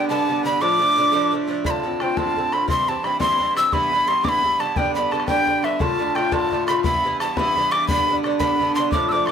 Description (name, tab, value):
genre	celtic folk, Celtic jig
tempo	116 BPM (dotted quarters)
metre	6/8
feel	straight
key	D dorian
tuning	A4 = 440 Hz
part	breathy wooden whistle	melody	0.0-9.3 s	E5 to E6	-20 LUFS	equal	none
part	Irish bouzouki	accompaniment	0.0-9.3 s	G2 to F4	-22 LUFS	right 1 dB	none
part	bodhran	percussion	1.6-9.3 s	none	-28 LUFS	left 2 dB	none
room	moderate small room reverb, RT60 0.5 s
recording	none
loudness	-18 LUFS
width	side -8 dB against mid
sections	0.0-1.7 A section; 1.7-9.3 A section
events	none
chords	0.0 G; 0.6 Dm; 1.7 Dm7; 2.7 C; 3.7 Em; 4.8 G; 5.8 Dm; 6.8 Em; 7.9 G